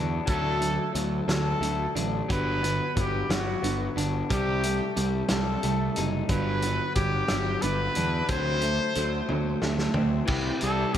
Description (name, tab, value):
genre	indie rock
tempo	60 BPM (dotted quarters)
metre	6/8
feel	straight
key	G major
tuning	A4 = 440 Hz
part	electric guitar through a small old amp	riff	0.0-11.0 s	E3 to G4	-33 LUFS	left 9 dB	spring reverb
part	overdriven electric guitar	riff	0.0-11.0 s	G2 to E4	-31 LUFS	right 6 dB	lush chorus, digital delay
part	fuzz picked electric bass	bass	0.0-11.0 s	F#1 to E2	-30 LUFS	equal	overdrive
part	clear trumpet	melody	0.3-11.0 s	F#4 to C5	-30 LUFS	left 1 dB	digital delay
part	loose indie drum kit	drums	0.3-11.0 s	crash cymbal, hi-hat, kick drum, snare drum, toms	-31 LUFS	equal	gated reverb
room	light reverb, studio ambience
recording	bright 1980s-style digital production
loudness	-24 LUFS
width	side -10 dB against mid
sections	0.0-10.3 A section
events	drum fill 9.3-10.3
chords	0.3 D; 2.3 Gmaj7; 4.3 Cm6; 6.3 Gmaj7; 8.3 D7; 10.3 C